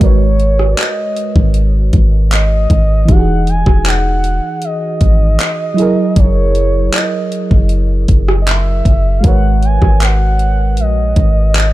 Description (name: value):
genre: contemporary R&B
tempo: 78 BPM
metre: 4/4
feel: straight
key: G# minor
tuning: A4 = 441 Hz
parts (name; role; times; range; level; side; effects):
- gliding portamento lead; melody; 0.0-11.7 s; C#5 to G#5; -20 LUFS; equal; chorus, tape echo
- mellow FM electric piano; accompaniment; 0.0-11.7 s; E3 to C#5; -19 LUFS; right 3 dB; chorus
- warm 808-style bass; bass; 0.0-11.7 s; E1 to A#1; -12 LUFS; equal; none
- pop drum kit; drums; 0.0-11.7 s; handclaps, hi-hat, kick drum, rim click; -13 LUFS; equal; overdrive
room: digital ambience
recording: dark, warm production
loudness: -10 LUFS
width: side -16 dB against mid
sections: 0.0-11.7 A section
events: none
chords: 0.0 G#m11; 3.1 Emaj9; 5.8 F#9; 9.2 G#m11